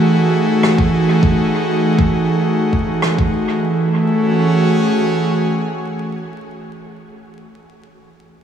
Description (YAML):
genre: ambient dub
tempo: 100 BPM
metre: 4/4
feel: straight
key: F# dorian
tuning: A4 = 439 Hz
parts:
  - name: airy breathy pad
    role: sustained chords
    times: 0.0-6.8 s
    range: E3 to G#4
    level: -15 LUFS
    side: equal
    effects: chorus
  - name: rim click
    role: drums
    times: 0.6-3.2 s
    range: none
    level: -25 LUFS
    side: right 1 dB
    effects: dub echo
  - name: electronic kick drum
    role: drums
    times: 0.8-3.3 s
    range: none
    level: -17 LUFS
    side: equal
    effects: none
room: moderate huge ambient reverb, RT60 7.5 s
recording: vinyl crackle, small room ambience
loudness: -13 LUFS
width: side -8 dB against mid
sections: 0.0-3.6 A section; 3.6-6.0 B section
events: none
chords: 0.0 F#m9